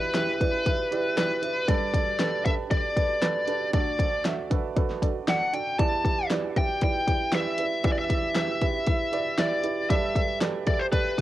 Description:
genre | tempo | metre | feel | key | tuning
piano-driven pop | 117 BPM | 4/4 | straight | E minor | A4 = 443 Hz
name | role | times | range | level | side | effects
bluesy overdriven lead guitar | melody | 0.0-11.2 s | B4 to A5 | -27 LUFS | left 1 dB | distortion, cassette tape
dark upright piano | accompaniment | 0.0-11.2 s | G1 to E5 | -29 LUFS | right 5 dB | cassette tape
pop drum kit | drums | 0.1-11.2 s | hi-hat, kick drum, snare drum | -27 LUFS | left 1 dB | cassette tape
room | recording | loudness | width
moderate booth ambience, RT60 0.2 s | home recording on cassette | -23 LUFS | side -14 dB against mid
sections
0.0-11.2 A section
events
none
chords
0.0 Em7; 1.7 Gadd9; 3.7 D; 5.8 Em7; 9.9 Gadd9

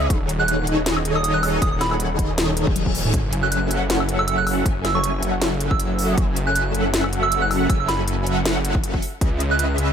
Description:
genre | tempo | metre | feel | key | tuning
future bass | 158 BPM | 4/4 | swing 55% on 16ths, half-time | F# dorian | A4 = 440 Hz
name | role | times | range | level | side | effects
soft synth bell | melody | 0.0-9.7 s | B5 to F#6 | -25 LUFS | right 4 dB | chorus, sidechain pumping, digital delay
big bright polysynth | riff | 0.0-9.9 s | D#3 to G#5 | -24 LUFS | equal | ensemble chorus, sidechain pumping
wide detuned saw bass | bass | 0.0-9.9 s | D#1 to C#2 | -24 LUFS | equal | chorus, sidechain pumping
electronic kick drum | drums | 0.1-9.3 s | none | -22 LUFS | equal | small room ambience
trap drum kit | drums | 0.1-9.9 s | hi-hat, snare drum, toms, woodblock | -25 LUFS | left 2 dB | small room ambience
reverse cymbal | sound effects | 2.6-3.1 s | none | -32 LUFS | left 6 dB | none
room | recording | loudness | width
little or no reverb | none | -18 LUFS | side -8 dB against mid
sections
0.0-9.9 A section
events
reverse cymbal 2.6-3.1; drum fill 2.8-3.1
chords
0.1 B13/D# (rootless); 3.1 F#m9; 9.0 C#m7

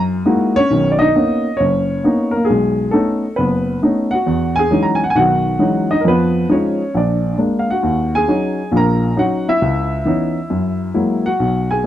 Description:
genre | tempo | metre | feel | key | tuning
solo jazz | 135 BPM | 4/4 | swing 66% on 8ths | B major | A4 = 440 Hz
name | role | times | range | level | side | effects
warm baby grand piano | solo | 0.0-11.9 s | F#1 to A#5 | -14 LUFS | equal | none
room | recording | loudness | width
small room ambience | dry, close 1970s-style studio recording | -14 LUFS | side -12 dB against mid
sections
0.7-11.9 A section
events
none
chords
0.0 F#13; 0.7 Bmaj9; 2.5 B9; 4.3 Emaj13; 6.1 Fm7b5; 6.9 A#7; 7.8 D#m7; 9.6 C#m9; 10.5 F#9

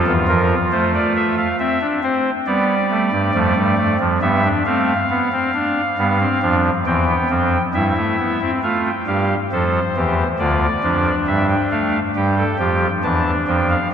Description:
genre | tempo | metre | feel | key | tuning
classical, baroque-style 3-part fugue for pipe organ | 68 BPM | 4/4 | straight | F major | A4 = 440 Hz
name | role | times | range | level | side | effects
pipe organ, soft reed | solo | 0.0-13.9 s | D2 to A5 | -16 LUFS | equal | none
room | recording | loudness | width
wet cathedral reverb, RT60 4.3 s | dark, warm production | -16 LUFS | side -8 dB against mid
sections
0.0-8.6 A section; 8.6-13.9 B section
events
none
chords
0.0 F; 1.6 C; 3.3 F; 5.1 G7/B; 6.9 C/E; 8.6 F; 10.4 Dm; 12.2 G5

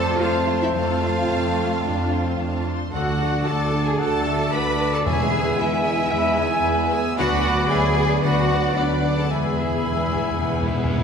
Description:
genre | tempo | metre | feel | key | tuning
cinematic | 112 BPM | 4/4 | straight | unclear | A4 = 440 Hz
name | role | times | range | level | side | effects
rich symphonic violin section | melody | 0.0-11.0 s | D5 to B5 | -29 LUFS | left 3 dB | none
dark cor anglais | second line | 0.0-11.0 s | B4 to A5 | -30 LUFS | equal | none
hollow concert flute | second line | 0.0-11.0 s | G#5 to B5 | -31 LUFS | equal | none
rich studio violin section | second line | 0.0-11.0 s | C5 to E6 | -34 LUFS | left 1 dB | none
warm clarinet | second line | 0.0-11.0 s | C5 to E5 | -29 LUFS | left 2 dB | none
rich symphonic viola section | accompaniment | 0.0-11.0 s | G#3 to D5 | -30 LUFS | right 1 dB | none
mellow French horn section | sustained chords | 0.0-11.0 s | E3 to D4 | -28 LUFS | left 1 dB | none
concert harp | arpeggios | 0.0-11.0 s | D3 to B4 | -29 LUFS | left 2 dB | none
clear symphonic double bass section | bass | 0.0-11.0 s | D2 to F2 | -27 LUFS | right 2 dB | none
warm symphonic cello section | bass | 0.0-11.0 s | D4 to B4 | -27 LUFS | right 2 dB | none
timpani | percussion | 5.1-5.8, 9.3-11.0 s | E2 | -28 LUFS | equal | none
room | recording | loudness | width
wet scoring stage reverb, RT60 1.6 s | heard from further back in the room | -19 LUFS | side -6 dB against mid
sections
0.0-11.0 A section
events
timpani fill 9.3-11.0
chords
0.0 F; 2.9 D; 5.1 E; 7.2 Bm/D; 9.3 E

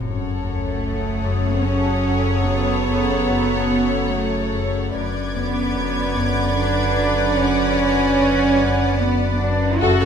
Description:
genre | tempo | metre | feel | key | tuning
cinematic, suspense film score | 74 BPM | 3/4 | straight | F# minor | A4 = 440 Hz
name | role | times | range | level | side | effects
warm symphonic violin section | melody | 0.0-10.1 s | F#5 | -32 LUFS | left 5 dB | none
warm chamber violin section | second line | 0.0-10.1 s | F#4 to D5 | -26 LUFS | left 2 dB | none
warm studio viola section | accompaniment | 0.0-10.1 s | A4 to B4 | -28 LUFS | right 2 dB | none
bright trombone section | sustained chords | 0.0-10.1 s | C#3 to A3 | -29 LUFS | right 4 dB | none
concert harp | riff | 0.0-10.1 s | F#2 to F#3 | -26 LUFS | left 8 dB | none
warm symphonic double bass section | bass | 0.0-10.1 s | F#2 | -25 LUFS | right 2 dB | none
saturated sub bass | drone | 0.0-10.1 s | F#1 | -30 LUFS | equal | none
sub drop | sound effects | 0.0-2.5 s | none | -31 LUFS | left 1 dB | none
warm symphonic violin section | texture | 0.0-10.1 s | A5 to G#6 | -31 LUFS | left 3 dB | none
warm symphonic cello section | bass | 0.4-10.1 s | A3 to F#4 | -22 LUFS | right 3 dB | none
room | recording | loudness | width
moderate scoring stage reverb, RT60 2.0 s | none | -17 LUFS | side -7 dB against mid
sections
0.0-10.1 A section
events
impact 0.0-2.5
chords
0.0 F#m; 4.9 Bmadd9/F#

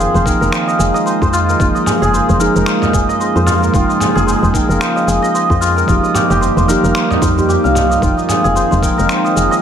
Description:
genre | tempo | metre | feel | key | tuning
organic downtempo | 112 BPM | 4/4 | swing 58% on 16ths | F minor | A4 = 438 Hz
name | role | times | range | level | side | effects
muted felt-like synth keys | accompaniment | 0.0-9.6 s | F3 to G5 | -19 LUFS | right 2 dB | chorus, sidechain pumping, digital delay
warbly tape-like pad | sustained chords | 0.0-9.6 s | Db3 to G4 | -20 LUFS | right 1 dB | chorus, built-in reverb, sidechain pumping
santur | arpeggios | 0.0-9.6 s | Eb4 to F5 | -15 LUFS | equal | digital delay
woody FM bass | bass | 0.0-9.5 s | F1 to F2 | -17 LUFS | equal | none
dusty soul sampler-style drum kit | drums | 0.0-9.6 s | finger snaps, shaker, toms | -22 LUFS | equal | none
udu | percussion | 0.1-8.8 s | none | -22 LUFS | equal | none
electronic kick drum | drums | 0.3-9.0 s | none | -19 LUFS | equal | none
room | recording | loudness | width
moderate lush hall reverb, RT60 1.9 s | none | -11 LUFS | side -8 dB against mid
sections
0.0-9.6 A section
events
none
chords
0.0 Fm7; 1.6 Bbm7/F; 3.7 Db6/F; 5.9 Eb/F

